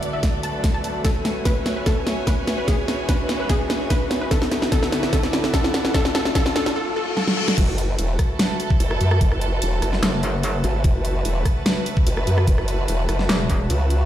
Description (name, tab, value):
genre	heavy wobble dubstep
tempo	147 BPM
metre	4/4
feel	half-time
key	F# minor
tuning	A4 = 439 Hz
part	wide unison pluck	melody	0.0-7.6 s	G#4 to A5	-28 LUFS	left 1 dB	cassette tape, ping-pong delay
part	rich chamber string section	sustained chords	0.0-14.1 s	C#3 to G#5	-30 LUFS	right 1 dB	sidechain pumping
part	dubstep drum kit	drums	0.0-14.0 s	crash cymbal, hi-hat, rim click, snare drum	-24 LUFS	equal	studio reverb
part	riser and reverse cymbal	sound effects	0.0-7.6 s	none	-30 LUFS	equal	none
part	airy breathy pad	texture	0.0-14.1 s	D3 to A5	-30 LUFS	equal	chorus, sidechain pumping
part	electronic kick drum	drums	0.2-13.6 s	none	-20 LUFS	equal	studio reverb
part	formant-sweep wobble bass	bass	7.6-14.1 s	E1 to F#2	-20 LUFS	equal	chorus, overdrive
part	metallic wobble bass	bass	10.0-10.6, 13.3-13.7 s	E1 to F#1	-22 LUFS	equal	chorus, overdrive
room	light reverb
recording	played on a big sound system in a bare room, stone room reverb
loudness	-18 LUFS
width	side -12 dB against mid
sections	0.0-7.6 A section; 7.6-14.1 B section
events	build-up 0.0-7.6; drum fill 0.0-6.8, 7.2-7.6; riser 0.0-7.6; reverse cymbal 6.8-7.6; drop 7.6-14.1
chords	0.0 D; 1.0 F#madd9; 2.7 C#m; 4.3 Bm; 5.9 D; 7.6 F#m